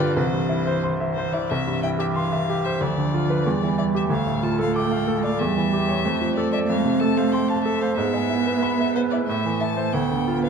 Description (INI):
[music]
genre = quick classical-period movement for piano trio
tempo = 92 BPM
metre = 2/4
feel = straight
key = C major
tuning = A4 = 440 Hz
[part]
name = rich violin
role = melody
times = 0.0-10.5 s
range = C5 to A5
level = -30 LUFS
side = left 8 dB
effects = none
[part]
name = rich cello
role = second line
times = 0.0-10.5 s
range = D3 to B3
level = -25 LUFS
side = right 6 dB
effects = none
[part]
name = bright baby grand piano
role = accompaniment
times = 0.0-10.5 s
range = C2 to D6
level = -22 LUFS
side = equal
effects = none
[sound]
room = wet scoring stage reverb, RT60 1.6 s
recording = none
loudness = -20 LUFS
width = side -6 dB against mid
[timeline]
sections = 0.0-1.5 A section; 1.5-10.5 A section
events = none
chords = 0.2 C; 2.8 Bdim/D; 3.5 Em7; 4.1 Dm; 5.4 C#dim/E; 6.0 Dm/F; 6.7 F; 8.0 E/G#; 9.3 Am; 9.9 Bdim/D